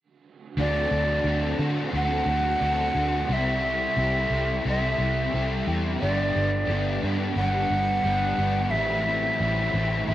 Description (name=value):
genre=rock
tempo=88 BPM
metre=4/4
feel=straight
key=unclear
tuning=A4 = 440 Hz
part: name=jazz flute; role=melody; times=0.6-10.1 s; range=D5 to F#5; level=-26 LUFS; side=equal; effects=cassette tape
part: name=evolving wavetable pad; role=sustained chords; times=1.7-10.1 s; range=G4 to C6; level=-39 LUFS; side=right 1 dB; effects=chorus, built-in reverb, cassette tape
part: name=crunchy overdriven guitar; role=riff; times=0.6-10.1 s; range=G2 to A4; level=-29 LUFS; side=left 6 dB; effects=ensemble chorus, cassette tape
part: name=raw garage guitar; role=riff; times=0.6-10.1 s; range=G2 to F#4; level=-31 LUFS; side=right 7 dB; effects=overdrive, reverse reverb, cassette tape
part: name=vintage muted fingered electric bass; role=bass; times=0.6-10.1 s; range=G1 to D3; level=-27 LUFS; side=equal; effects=none
room=light reverb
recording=home recording on cassette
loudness=-22 LUFS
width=side -13 dB against mid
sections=0.6-10.1 A section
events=none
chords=0.6 D7; 3.3 C6; 6.0 Gmaj7; 8.7 Am7